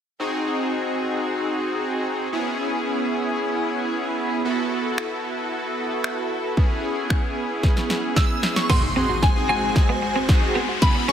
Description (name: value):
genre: dance-pop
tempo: 113 BPM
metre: 4/4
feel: straight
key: unclear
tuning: A4 = 440 Hz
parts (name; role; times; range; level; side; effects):
- big bright polysynth; accompaniment; 0.2-11.0 s; B3 to A4; -24 LUFS; equal; lush chorus, sidechain pumping, dub echo
- house drum kit; drums; 5.0-11.1 s; crash cymbal, finger snaps, hi-hat, kick drum, snare drum; -20 LUFS; equal; none
- shimmering bell with halo; melody; 8.2-11.1 s; G#5 to E6; -25 LUFS; equal; ensemble chorus, phaser, dub echo
- supersaw pad; sustained chords; 9.1-11.1 s; G#3 to C#5; -29 LUFS; equal; phaser, sidechain pumping
- tight sequenced synth; arpeggios; 8.7-11.1 s; C#3 to D#5; -32 LUFS; left 1 dB; chorus, sidechain pumping, dub echo
- clean electric guitar; riff; 8.7-11.1 s; B3 to C#4; -28 LUFS; right 4 dB; analog chorus, dub echo
- riser and impact; sound effects; 8.8-11.1 s; none; -28 LUFS; left 1 dB; none
room: moderate echo chamber reverb, RT60 2.0 s, digital ambience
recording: echo-heavy mix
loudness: -20 LUFS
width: side -9 dB against mid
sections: 0.2-8.7 A section; 8.7-11.1 B section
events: drum fill 7.6-8.7, 8.7-11.1; build-up 8.7-11.1; impact 8.7-10.8; riser 8.8-11.1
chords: 0.2 G#7; 2.3 C#m7; 4.4 B7sus4; 6.6 C#m7; 8.7 G#7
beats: | 0.20 0.73 1.26 1.79 | 2.33 2.86 3.39 3.92 | 4.45 4.98 5.51 6.04 | 6.57 7.10 7.63 8.17 | 8.70 9.23 9.76 10.29 | 10.82